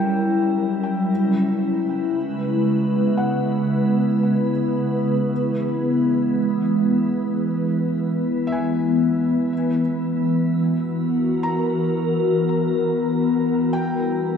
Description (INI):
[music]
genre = ambient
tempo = free time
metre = none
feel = none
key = C# dorian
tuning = A4 = 440 Hz
[part]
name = glassy FM pad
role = sustained chords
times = 0.0-14.4 s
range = C#3 to B4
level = -19 LUFS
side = equal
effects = ensemble chorus, built-in reverb, phaser, shimmer reverb
[part]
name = felt-muted upright piano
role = arpeggios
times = 0.0-14.4 s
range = E5 to A#5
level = -33 LUFS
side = left 1 dB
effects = ping-pong delay, shimmer reverb
[sound]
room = wet concert hall reverb, RT60 2.1 s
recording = none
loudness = -18 LUFS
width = side -7 dB against mid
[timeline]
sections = 0.0-14.4 A section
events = fade-out on felt piano 0.0-14.4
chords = 0.0 F#7b9; 1.1 C#m7; 5.3 E; 9.5 B5; 13.7 Edim